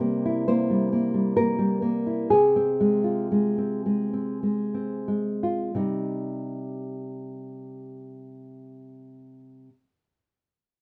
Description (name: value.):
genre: romantic piece for solo classical guitar.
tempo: 42-68 BPM.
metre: 3/4.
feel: rubato.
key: C minor.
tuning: A4 = 441 Hz.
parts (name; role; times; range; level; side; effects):
nylon-string guitar; solo; 0.0-9.7 s; C3 to C5; -26 LUFS; equal; none.
room: moderate studio ambience, RT60 0.4 s.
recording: none.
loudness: -25 LUFS.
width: mono.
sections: 0.0-5.8 A section; 5.8-9.5 B section.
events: slowing down 0.0-5.8.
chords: 0.0 C7; 2.3 Fm/C; 5.8 Cm.